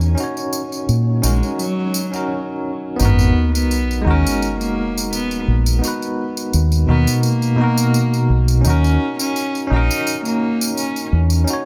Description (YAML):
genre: trip hop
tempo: 85 BPM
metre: 4/4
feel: swing 53% on 16ths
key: G# minor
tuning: A4 = 440 Hz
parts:
  - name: barky tine electric piano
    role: accompaniment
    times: 0.0-11.7 s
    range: B2 to C#5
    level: -23 LUFS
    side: equal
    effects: tremolo, tape echo
  - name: deep dub fingered electric bass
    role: bass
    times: 0.0-11.4 s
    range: G#1 to A#2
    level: -17 LUFS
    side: equal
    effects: none
  - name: tambourine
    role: percussion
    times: 0.0-11.6 s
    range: none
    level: -28 LUFS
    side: equal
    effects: none
  - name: flickering grainy texture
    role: texture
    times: 0.0-2.3 s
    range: C#4 to C#5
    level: -41 LUFS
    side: equal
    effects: none
  - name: warm cello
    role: melody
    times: 1.2-11.1 s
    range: F#3 to D#4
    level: -25 LUFS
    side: equal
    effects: tape echo
  - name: sub drop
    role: sound effects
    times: 3.0-5.8 s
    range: none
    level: -24 LUFS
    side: equal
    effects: none
room: small room reverb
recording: none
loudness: -18 LUFS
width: mono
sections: 0.0-3.0 A section; 3.0-11.7 B section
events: filter sweep on tine electric piano 0.0-3.0; break 2.3-3.0; impact 3.0-5.8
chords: 0.0 D#m7; 3.0 G#m9; 8.7 D#m7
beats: | 0.18 0.89 1.59 2.30 | 3.01 3.71 4.42 5.12 | 5.83 6.54 7.24 7.95 | 8.65 9.36 10.06 10.77 | 11.48